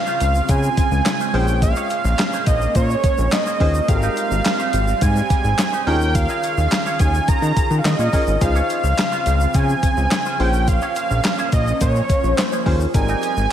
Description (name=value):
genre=early-eighties boogie funk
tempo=106 BPM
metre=4/4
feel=straight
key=unclear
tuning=A4 = 436 Hz
part: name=fat analog lead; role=melody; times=0.0-13.5 s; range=Db5 to Bb5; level=-22 LUFS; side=right 2 dB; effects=diffuse ambient delay
part: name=lush unison pad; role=sustained chords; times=0.0-13.5 s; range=Db3 to Ab4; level=-27 LUFS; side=equal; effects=chorus, phaser
part: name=electric guitar with an envelope filter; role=riff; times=0.1-13.4 s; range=Db4 to Eb5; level=-31 LUFS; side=right 3 dB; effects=wide subtle chorus
part: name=tube shaker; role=percussion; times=0.1-13.5 s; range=none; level=-37 LUFS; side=left 7 dB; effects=none
part: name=fat analog bass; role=bass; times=0.2-13.5 s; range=Ab1 to Eb3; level=-19 LUFS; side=equal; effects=none
part: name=clean 12-bit digital drum machine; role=drums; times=0.2-13.4 s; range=handclaps, hi-hat, kick drum, snare drum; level=-20 LUFS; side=equal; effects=none
part: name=warm baby grand piano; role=accompaniment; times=1.3-13.5 s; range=G3 to C5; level=-26 LUFS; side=left 2 dB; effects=none
room=moderate lush hall reverb, RT60 2.0 s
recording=dreamy mix soaked in reverb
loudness=-16 LUFS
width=side -10 dB against mid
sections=0.0-13.5 A section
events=none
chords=0.0 Dbmaj7; 1.3 Bbm9; 3.9 Abmaj7; 5.9 Eb9sus4; 8.4 Dbmaj7; 10.4 Bbm9; 12.9 Abmaj7